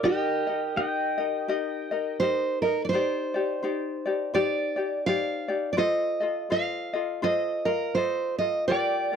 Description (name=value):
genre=Hawaiian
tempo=83 BPM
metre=4/4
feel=swing 59% on 8ths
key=unclear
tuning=A4 = 437 Hz
part: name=pedal steel guitar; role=melody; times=0.0-2.2, 8.7-9.2 s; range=Bb4 to G5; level=-28 LUFS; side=left 1 dB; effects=none
part: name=ukulele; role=accompaniment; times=0.0-9.2 s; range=Eb4 to Eb5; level=-28 LUFS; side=left 5 dB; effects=none
part: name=fingerpicked steel-string acoustic guitar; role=second line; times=0.1-9.2 s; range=G4 to F5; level=-27 LUFS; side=right 5 dB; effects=none
room=light reverb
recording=dry, close 1970s-style studio recording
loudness=-24 LUFS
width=side -7 dB against mid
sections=0.0-9.2 A section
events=none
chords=0.0 Eb; 2.9 Cmadd9; 5.8 F7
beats=| 0.04 0.76 1.48 2.20 | 2.92 3.63 4.36 5.08 | 5.80 6.52 7.24 7.96 | 8.69